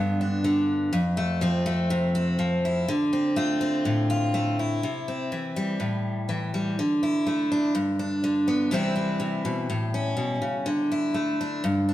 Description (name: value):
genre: highlife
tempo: 123 BPM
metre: 4/4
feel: swing 54% on 16ths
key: C major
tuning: A4 = 440 Hz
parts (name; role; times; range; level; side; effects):
- picked steel-string acoustic guitar; solo; 0.0-11.9 s; F2 to F4; -23 LUFS; equal; none
room: wet stone room reverb, RT60 1.3 s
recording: band playing live in one room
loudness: -23 LUFS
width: side -14 dB against mid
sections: 0.0-4.8 A section; 4.8-11.9 B section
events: none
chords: 0.0 G; 0.9 F; 2.9 Dm7; 4.8 C; 5.8 A5; 6.8 Dsus2; 7.8 G; 8.7 C; 9.7 A7; 10.7 Dsus2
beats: 0.44 | 0.93 1.41 1.90 2.39 | 2.88 3.36 3.85 4.34 | 4.83 5.32 5.80 6.29 | 6.78 7.27 7.76 8.24 | 8.73 9.22 9.71 10.20 | 10.69 11.17 11.66